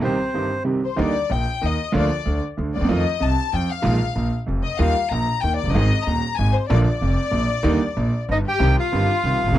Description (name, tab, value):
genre	tango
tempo	189 BPM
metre	3/4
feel	rubato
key	Eb major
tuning	A4 = 440 Hz
part	bandoneon	melody	0.0-0.6, 8.3-9.6 s	C5 to G5	-23 LUFS	right 3 dB	none
part	warm studio violin section	second line	0.0-9.5 s	C4 to Bb5	-25 LUFS	left 7 dB	none
part	bright concert grand piano	accompaniment	0.0-9.6 s	Eb1 to Ab4	-22 LUFS	right 2 dB	none
part	upright bass	bass	1.0-9.6 s	F1 to F2	-22 LUFS	equal	none
room	little or no reverb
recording	dry, close 1970s-style studio recording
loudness	-18 LUFS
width	side -13 dB against mid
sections	1.0-8.6 A section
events	break 0.0-1.0; violin section solo 1.0-8.6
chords	0.0 Cm; 1.0 Ebmaj7; 1.9 Bb/D; 2.9 F7; 3.8 Bb7sus4; 4.2 Bb5; 4.8 Ebadd9; 5.8 Ab; 6.7 Bb; 7.6 Ebmaj7; 8.3 Eb/G; 8.6 Cm